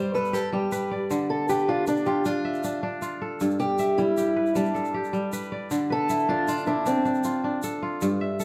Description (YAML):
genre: west african traditional, West African string and xylophone music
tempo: 104 BPM (dotted quarters)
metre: 12/8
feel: straight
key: D dorian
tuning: A4 = 441 Hz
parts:
  - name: fingerpicked old ladder-braced acoustic guitar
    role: melody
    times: 0.0-7.6 s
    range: C4 to C5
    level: -28 LUFS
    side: equal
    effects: none
  - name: kora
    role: arpeggios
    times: 0.0-8.4 s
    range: G2 to E5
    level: -30 LUFS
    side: equal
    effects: none
  - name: tube shaker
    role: percussion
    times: 0.1-8.4 s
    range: none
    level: -46 LUFS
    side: equal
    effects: none
room: moderate recital hall reverb, RT60 1.7 s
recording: dark, warm production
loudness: -26 LUFS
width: mono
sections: 0.0-5.7 A section; 5.7-8.4 A section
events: none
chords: 0.0 G; 1.1 Dm; 3.4 G; 5.7 Dm